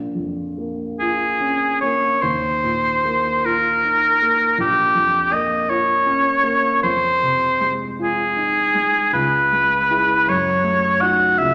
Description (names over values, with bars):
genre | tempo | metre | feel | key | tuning
classical, impressionist duo for oboe and grand piano | 52 BPM (dotted quarters) | 6/8 | uneven beats, rubato | Bb minor | A4 = 437 Hz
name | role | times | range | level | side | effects
dark grand piano | accompaniment | 0.0-11.5 s | Bb1 to G#4 | -27 LUFS | equal | none
bright oboe | melody | 1.0-11.5 s | G4 to F#5 | -19 LUFS | equal | none
room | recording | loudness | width
wet recital hall reverb, RT60 1.5 s | none | -18 LUFS | mono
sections
0.0-11.5 A section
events
none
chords
0.0 Bbm; 2.2 Ebsus2; 4.6 Bbm6; 6.8 Fm7; 9.1 C#m7; 10.3 F#m6